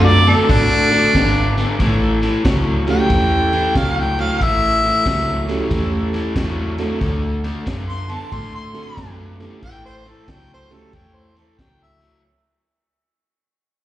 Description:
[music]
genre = electric blues shuffle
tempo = 92 BPM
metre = 4/4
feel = swing 65% on 8ths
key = unclear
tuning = A4 = 441 Hz
[part]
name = mellow harmonica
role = melody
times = 0.0-12.2 s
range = D4 to C6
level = -18 LUFS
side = equal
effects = overdrive, slapback echo
[part]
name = bright reed electric piano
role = accompaniment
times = 0.0-10.9 s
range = A3 to A4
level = -22 LUFS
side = right 4 dB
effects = fast tremolo, slapback echo
[part]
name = overdriven semi-hollow guitar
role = riff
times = 0.0-12.2 s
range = A2 to B3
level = -22 LUFS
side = left 2 dB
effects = spring reverb, slapback echo
[part]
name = vintage muted fingered electric bass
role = bass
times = 0.0-12.1 s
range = G#1 to A2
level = -21 LUFS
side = equal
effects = none
[part]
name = crunchy breakbeat drum kit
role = drums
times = 0.3-12.1 s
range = kick drum, ride cymbal, snare drum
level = -24 LUFS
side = equal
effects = none
[sound]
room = light reverb, studio reverb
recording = live gig heard through the venue's PA, club reverb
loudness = -15 LUFS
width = side -13 dB against mid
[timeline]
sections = 0.0-12.2 A section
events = fade-out 0.0-12.2; harmonica solo 0.0-12.2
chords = 0.0 D7; 1.8 A7; 7.0 D7; 9.6 A7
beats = 0.49 1.15 | 1.80 2.45 3.10 3.75 | 4.41 5.06 5.71 6.36 | 7.02 7.67 8.32 8.98 | 9.63 10.28 10.94 11.59

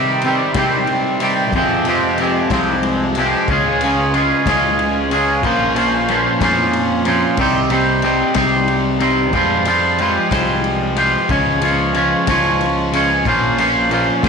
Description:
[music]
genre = indie rock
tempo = 61 BPM (dotted quarters)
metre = 6/8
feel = straight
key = F minor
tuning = A4 = 440 Hz
[part]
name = twangy electric guitar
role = riff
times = 0.0-14.3 s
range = F2 to Db5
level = -14 LUFS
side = right 1 dB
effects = double-tracked left and right
[part]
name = fuzz fingered electric bass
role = bass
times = 0.0-14.3 s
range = Bb1 to C3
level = -24 LUFS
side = equal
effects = overdrive
[part]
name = raw garage drum kit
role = drums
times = 0.2-14.3 s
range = crash cymbal, kick drum, ride cymbal, snare drum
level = -24 LUFS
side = left 6 dB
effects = none
[sound]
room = light reverb, small room ambience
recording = 1960s-style stereo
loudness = -14 LUFS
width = side -5 dB against mid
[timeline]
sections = 0.0-14.3 A section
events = none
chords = 0.0 Cm; 1.5 Fmadd9; 3.5 Db; 5.4 Bbmadd9; 7.4 Cm; 9.3 Fmadd9; 11.3 Db; 13.3 Bbmadd9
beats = 0.55 | 1.52 2.50 | 3.48 4.45 | 5.43 6.41 | 7.38 8.36 | 9.34 10.32 | 11.29 12.27 | 13.25 14.23

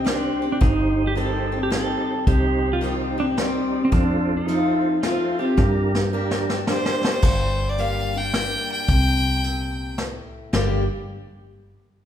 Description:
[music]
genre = honky-tonk and classic country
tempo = 109 BPM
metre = 3/4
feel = swing 66% on 8ths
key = G minor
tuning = A4 = 440 Hz
[part]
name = pedal steel guitar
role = second line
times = 0.0-6.6, 10.5-10.9 s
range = C4 to A4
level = -24 LUFS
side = right 2 dB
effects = none
[part]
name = picked steel-string acoustic guitar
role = accompaniment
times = 0.0-10.8 s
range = F2 to G4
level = -27 LUFS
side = left 4 dB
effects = none
[part]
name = vintage muted fingered electric bass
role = bass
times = 0.0-10.9 s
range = G1 to G2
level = -26 LUFS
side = equal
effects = none
[part]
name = tonewheel organ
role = accompaniment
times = 0.1-7.1 s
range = C4 to D5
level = -29 LUFS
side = right 5 dB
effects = chorus vibrato, stopped rotary speaker
[part]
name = vintage brush drum kit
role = drums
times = 0.1-10.7 s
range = crash cymbal, hi-hat, kick drum, snare drum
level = -23 LUFS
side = equal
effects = none
[part]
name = clear fiddle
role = melody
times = 6.7-10.0 s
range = C5 to G5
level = -25 LUFS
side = left 1 dB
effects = none
[sound]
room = wet recital hall reverb, RT60 1.6 s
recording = recorded in a church or concert hall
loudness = -19 LUFS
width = side -10 dB against mid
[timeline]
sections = 0.0-7.2 A section; 7.2-10.5 B section; 10.5-12.1 C section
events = pedal steel guitar solo 0.0-7.2; drum fill 5.6-7.2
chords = 0.0 Cm; 3.9 F; 5.6 Gm; 8.9 C5; 10.5 Gm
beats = 0.07 | 0.62 1.17 1.72 | 2.27 2.83 3.38 | 3.93 4.48 5.03 | 5.58 6.13 6.68 | 7.23 7.78 8.34 | 8.88 9.44 9.99 | 10.54

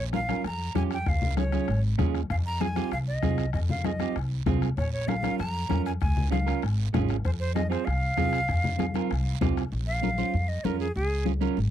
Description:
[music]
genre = latin, cumbia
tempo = 194 BPM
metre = 4/4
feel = straight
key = F minor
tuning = A4 = 439 Hz
[part]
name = breathy bright jazz flute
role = melody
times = 0.0-11.3 s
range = Ab4 to Bb5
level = -32 LUFS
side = equal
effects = none
[part]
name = upright bass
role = bass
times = 0.0-11.7 s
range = Ab1 to F2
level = -28 LUFS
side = equal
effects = none
[part]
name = semi-hollow electric guitar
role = accompaniment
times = 0.1-11.6 s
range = C4 to C5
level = -30 LUFS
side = right 18 dB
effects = none
[part]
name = bombo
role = percussion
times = 0.1-9.7 s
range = none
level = -32 LUFS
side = left 2 dB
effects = none
[part]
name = congas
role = percussion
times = 0.1-11.6 s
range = none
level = -32 LUFS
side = left 6 dB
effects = none
[part]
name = guiro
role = percussion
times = 0.1-11.7 s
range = none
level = -45 LUFS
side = right 21 dB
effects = none
[sound]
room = little or no reverb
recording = dry, close 1970s-style studio recording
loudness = -24 LUFS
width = side -10 dB against mid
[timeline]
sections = 0.0-9.7 A section; 9.7-11.7 B section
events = flute solo 9.7-11.7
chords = 0.0 Bbm; 1.1 Db; 2.3 Fm7; 4.8 Bbm; 6.0 Db; 7.2 Fm; 9.7 Bbm; 11.0 Db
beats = 0.13 0.44 0.75 | 1.06 1.37 1.68 1.99 | 2.30 2.61 2.92 3.23 | 3.54 3.85 4.16 4.46 | 4.77 5.08 5.39 5.70 | 6.01 6.32 6.63 6.94 | 7.25 7.55 7.86 8.17 | 8.48 8.79 9.10 9.41 | 9.72 10.03 10.34 10.64 | 10.95 11.26 11.57

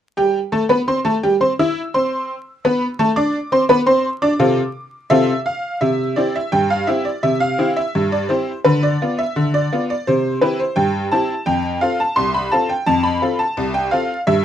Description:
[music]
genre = ragtime piano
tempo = 85 BPM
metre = 2/4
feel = straight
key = C major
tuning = A4 = 442 Hz
[part]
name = tack piano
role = solo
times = 0.2-14.4 s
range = C2 to E6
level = -16 LUFS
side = equal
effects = none
[sound]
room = light reverb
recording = dark, warm production, vinyl crackle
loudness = -16 LUFS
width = side -10 dB against mid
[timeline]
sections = 0.2-5.8 A section; 5.8-14.4 B section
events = none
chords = 0.2 C; 3.0 F; 5.8 C; 8.6 Bdim/D; 10.1 C; 11.5 F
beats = | 0.18 0.89 | 1.59 2.30 | 3.00 3.70 | 4.40 5.11 | 5.82 6.53 | 7.23 7.94 | 8.65 9.35 | 10.06 10.76 | 11.46 12.17 | 12.88 13.58 | 14.28

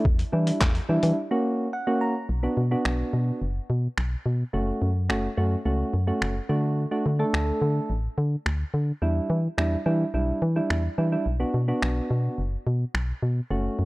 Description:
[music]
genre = dance-pop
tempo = 107 BPM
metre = 4/4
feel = straight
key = B minor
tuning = A4 = 439 Hz
[part]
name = soft electric-piano-like synth keys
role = accompaniment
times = 0.0-13.8 s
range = G3 to A#5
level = -26 LUFS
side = right 1 dB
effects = chorus, sidechain pumping
[part]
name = organ-like FM bass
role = bass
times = 0.1-13.8 s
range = F#1 to E3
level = -24 LUFS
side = equal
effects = sidechain pumping
[part]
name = boom bap sampler-style drum kit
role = drums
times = 0.1-13.1 s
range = finger snaps, handclaps, hi-hat, kick drum, snare drum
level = -26 LUFS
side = equal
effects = none
[sound]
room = little or no reverb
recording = dry, gritty hardware recording, transformer saturation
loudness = -23 LUFS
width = side -21 dB against mid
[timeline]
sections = 0.0-2.3 A section; 2.3-13.8 B section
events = break 1.2-2.3; synth keys fill 1.5-2.3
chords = 0.1 Em7; 1.2 F#; 2.3 Bm; 4.5 F#m; 6.5 D; 9.0 Em7; 11.3 Bm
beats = | 0.05 0.61 1.17 1.73 | 2.29 2.85 3.41 3.98 | 4.54 5.10 5.66 6.22 | 6.78 7.34 7.90 8.46 | 9.02 9.58 10.14 10.70 | 11.27 11.82 12.39 12.95 | 13.51

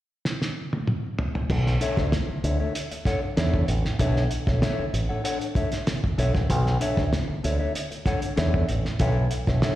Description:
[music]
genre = funk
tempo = 96 BPM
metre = 4/4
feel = straight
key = B minor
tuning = A4 = 440 Hz
[part]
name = cloth-damped thuddy drum kit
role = drums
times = 0.3-9.8 s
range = crash cymbal, hi-hat, kick drum, snare drum, toms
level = -26 LUFS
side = equal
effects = slapback echo
[part]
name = fingered electric bass with an envelope filter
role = bass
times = 1.5-9.6 s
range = A1 to E2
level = -24 LUFS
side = equal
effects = none
[part]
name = mellow electric guitar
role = accompaniment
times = 1.8-9.8 s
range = D4 to F#5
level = -29 LUFS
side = left 2 dB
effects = wide subtle chorus, slapback echo
[sound]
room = light reverb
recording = live gig heard through the venue's PA, recital hall reverb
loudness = -22 LUFS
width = side -14 dB against mid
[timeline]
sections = 0.0-1.5 A section; 1.5-9.8 B section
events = drum fill 0.2-1.5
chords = 0.0 N.C.; 1.5 Bm11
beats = 0.25 0.87 | 1.50 2.12 2.75 3.37 | 4.00 4.62 5.25 5.87 | 6.50 7.12 7.75 8.37 | 9.00 9.62

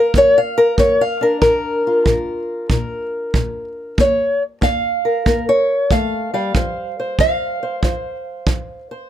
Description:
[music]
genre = acoustic country blues, solo or duo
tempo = 94 BPM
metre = 4/4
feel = swing 67% on 8ths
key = Bb major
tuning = A4 = 440 Hz
[part]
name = fingerpicked old ladder-braced acoustic guitar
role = melody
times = 0.0-9.1 s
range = Bb2 to F5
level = -16 LUFS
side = left 1 dB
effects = none
[part]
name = kick drum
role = drums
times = 0.1-8.7 s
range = none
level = -19 LUFS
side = right 2 dB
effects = none
[sound]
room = moderate booth ambience, RT60 0.2 s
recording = none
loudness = -15 LUFS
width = side -11 dB against mid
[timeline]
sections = 0.0-9.1 A section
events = steel-string acoustic guitar solo 0.0-9.1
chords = 0.0 Bb; 6.5 F5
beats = 0.15 0.79 | 1.43 2.06 2.70 3.34 | 3.98 4.62 5.26 5.91 | 6.55 7.19 7.83 8.47

